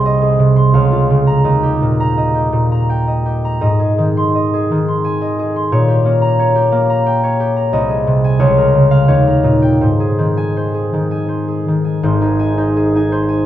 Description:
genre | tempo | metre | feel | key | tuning
classical, solo harp piece | 79-90 BPM | 3/4 | rubato | Ab major | A4 = 441 Hz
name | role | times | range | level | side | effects
concert harp | solo | 0.0-13.5 s | Ab1 to C6 | -12 LUFS | equal | none
room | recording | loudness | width
moderate concert hall reverb, RT60 1.9 s | close, detailed microphones | -12 LUFS | side -12 dB against mid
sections
0.0-12.1 A section; 12.1-13.5 B section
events
none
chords
0.0 Ab/C; 0.7 Bbm/Db; 1.5 Eb; 3.6 Ab; 5.7 Gdim/Bb; 7.7 Ab/C; 8.4 Bbm/Db; 9.1 Eb7; 9.8 Ab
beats
0.06 0.74 | 1.46 2.18 2.90 | 3.63 4.34 5.03 | 5.71 6.38 7.07 | 7.74 8.42 9.10 | 9.82 10.58 11.31 | 12.05 12.76 13.46

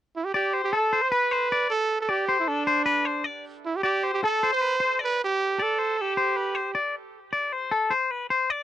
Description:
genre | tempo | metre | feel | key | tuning
rock | 309 BPM (eighths) | 9/8 | straight | unclear | A4 = 437 Hz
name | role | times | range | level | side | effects
clear trumpet | melody | 0.2-6.8 s | D4 to C5 | -26 LUFS | right 4 dB | none
twangy electric guitar | arpeggios | 0.3-8.6 s | A4 to D5 | -24 LUFS | left 4 dB | none
room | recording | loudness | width
little or no reverb | dry, close 1970s-style studio recording | -22 LUFS | side -12 dB against mid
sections
0.0-8.6 A section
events
none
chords
0.0 Am11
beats
0.16 0.35 0.55 0.74 0.94 1.13 1.32 1.52 | 1.71 1.91 2.10 2.29 2.49 2.68 2.88 3.07 3.26 | 3.46 3.65 3.85 4.04 4.23 4.43 4.62 4.82 5.01 | 5.20 5.40 5.59 5.79 5.98 6.17 6.37 6.56 6.75 | 6.95 7.14 7.34 7.53 7.73 7.92 8.12 8.31 8.50

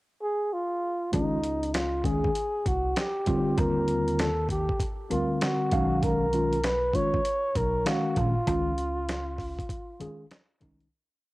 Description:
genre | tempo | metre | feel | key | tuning
hip hop, jazz-hop | 98 BPM | 4/4 | swing 65% on 16ths | Db major | A4 = 441 Hz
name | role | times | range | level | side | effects
breathy flugelhorn | melody | 0.2-10.3 s | Eb4 to Db5 | -28 LUFS | equal | cassette tape
mellow tine electric piano | accompaniment | 1.1-10.9 s | D3 to F5 | -28 LUFS | equal | medium stereo tremolo, cassette tape
upright bass | bass | 1.1-10.9 s | Bb1 to Eb2 | -31 LUFS | equal | tube saturation
dusty soul sampler-style drum kit | drums | 1.1-10.9 s | hi-hat, kick drum, snare drum | -32 LUFS | equal | cassette tape
room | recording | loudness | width
light reverb | home recording on cassette | -25 LUFS | side -20 dB against mid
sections
0.0-1.1 pickup bar; 1.1-10.9 A section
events
fade-out 8.5-10.9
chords
0.0 N.C.; 1.1 Dbsus2; 3.3 Ebmaj9; 5.7 Cbmaj9; 8.5 Dbadd9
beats
0.52 | 1.13 1.74 2.35 2.96 | 3.58 4.19 4.80 5.41 | 6.03 6.64 7.25 7.86 | 8.47 9.09 9.70 10.31

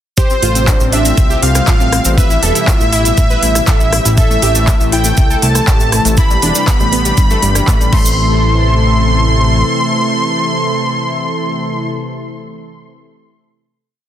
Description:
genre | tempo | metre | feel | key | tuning
progressive house | 120 BPM | 4/4 | straight | A minor | A4 = 440 Hz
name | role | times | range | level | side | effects
soft supersaw | melody | 0.2-11.9 s | C5 to C6 | -17 LUFS | equal | vintage 12-bit sampler grit, tape echo
lush unison pad | sustained chords | 0.2-11.9 s | B2 to A4 | -20 LUFS | equal | chorus, sidechain pumping
analog pluck | arpeggios | 0.2-11.9 s | G3 to B4 | -19 LUFS | equal | chorus, sidechain pumping, dub echo
electronic kick drum | drums | 0.2-8.0 s | none | -12 LUFS | equal | none
pop drum kit | drums | 0.2-8.0 s | crash cymbal, handclaps, hi-hat, rim click | -19 LUFS | equal | sidechain pumping on hats, sidechain pumping on cymbals
cabasa | percussion | 0.2-8.2 s | none | -22 LUFS | right 3 dB | none
fat analog bass | bass | 0.4-9.6 s | E1 to C2 | -15 LUFS | equal | sidechain pumping
room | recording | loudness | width
light reverb, digital ambience | dense, heavily limited modern master | -10 LUFS | side -11 dB against mid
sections
0.2-8.2 drop; 8.2-12.2 final hit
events
drop 0.2-8.2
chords
0.2 Fadd9/A; 2.2 Em; 4.2 Am; 6.2 Cadd9; 7.9 Am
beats
| 0.18 0.68 1.18 1.68 | 2.18 2.68 3.18 3.68 | 4.18 4.68 5.18 5.68 | 6.18 6.68 7.18 7.68 | 8.18 8.68 9.18 9.68 | 10.18 10.68 11.18 11.68

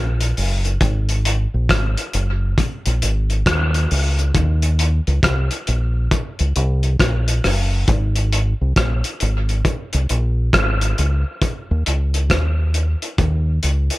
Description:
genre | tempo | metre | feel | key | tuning
dub reggae | 68 BPM | 4/4 | swing 63% on 16ths | Eb dorian | A4 = 441 Hz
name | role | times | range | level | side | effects
deep dub fingered electric bass | bass | 0.0-13.9 s | Gb1 to Eb2 | -18 LUFS | equal | none
cloth-damped thuddy drum kit | drums | 0.2-14.0 s | hi-hat, kick drum, rim click | -20 LUFS | equal | none
room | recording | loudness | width
light reverb | none | -16 LUFS | side -18 dB against mid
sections
0.0-11.4 A section; 11.4-14.0 B section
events
none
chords
none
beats
| 0.81 1.69 2.58 3.46 | 4.35 5.23 6.11 7.00 | 7.88 8.77 9.65 10.53 | 11.42 12.30 13.18

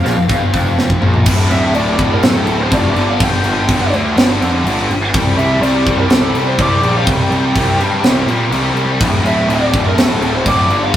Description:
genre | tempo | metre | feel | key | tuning
heavy metal | 124 BPM | 4/4 | straight | D minor | A4 = 440 Hz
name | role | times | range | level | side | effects
bluesy overdriven lead guitar | melody | 0.0-10.9 s | A4 to G5 | -19 LUFS | equal | distortion
heavy high-gain guitar | riff | 0.0-11.0 s | D2 to G3 | -17 LUFS | left 1 dB | distortion
fuzz picked electric bass | bass | 0.0-11.0 s | D1 to Bb2 | -17 LUFS | equal | overdrive
tight metal drum kit | drums | 0.1-11.0 s | crash cymbal, hi-hat, kick drum, snare drum, toms | -16 LUFS | equal | none
room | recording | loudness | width
moderate studio reverb, RT60 0.5 s | rough rehearsal-room recording | -11 LUFS | side -11 dB against mid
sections
0.0-1.3 A section; 1.3-11.0 B section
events
drum fill 0.8-1.3; half time 1.3-11.0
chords
0.0 F5; 1.3 Dm; 3.0 G5; 5.1 C5; 9.0 D5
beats
0.29 0.77 | 1.26 1.74 2.23 2.71 | 3.20 3.68 4.16 4.65 | 5.13 5.61 6.10 6.58 | 7.07 7.55 8.03 8.52 | 9.00 9.49 9.97 10.45 | 10.94

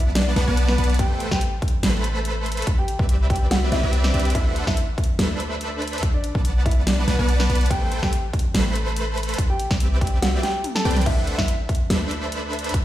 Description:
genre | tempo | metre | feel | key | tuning
future bass | 143 BPM | 4/4 | swing 54% on 16ths, half-time | unclear | A4 = 438 Hz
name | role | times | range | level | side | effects
dark concert grand piano | melody | 0.0-11.6 s | B3 to A5 | -29 LUFS | left 1 dB | sidechain pumping, digital delay
supersaw chords | riff | 0.0-12.7 s | A3 to B5 | -27 LUFS | right 1 dB | sidechain pumping, digital delay
warm 808-style bass | bass | 0.0-12.7 s | A1 to D2 | -22 LUFS | equal | sidechain pumping
dubstep drum kit | drums | 0.0-12.8 s | crash cymbal, hi-hat, snare drum, toms | -26 LUFS | right 1 dB | small room reverb
electronic kick drum | drums | 1.0-12.8 s | none | -22 LUFS | equal | overdrive, small room reverb
room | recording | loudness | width
light reverb | played on a big sound system in a bare room, stone room reverb | -19 LUFS | side -13 dB against mid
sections
0.0-12.8 A section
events
drum fill 10.6-11.1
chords
0.0 Bm7; 1.0 Am7; 2.7 Cmaj7; 4.3 D13; 6.0 Bm7; 7.7 Am7; 9.4 Cmaj7; 11.1 D13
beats
0.15 0.57 | 0.99 1.41 1.83 2.25 | 2.67 3.09 3.51 3.93 | 4.35 4.77 5.19 5.61 | 6.03 6.45 6.87 7.29 | 7.71 8.12 8.54 8.96 | 9.38 9.80 10.22 10.64 | 11.06 11.48 11.90 12.32 | 12.74

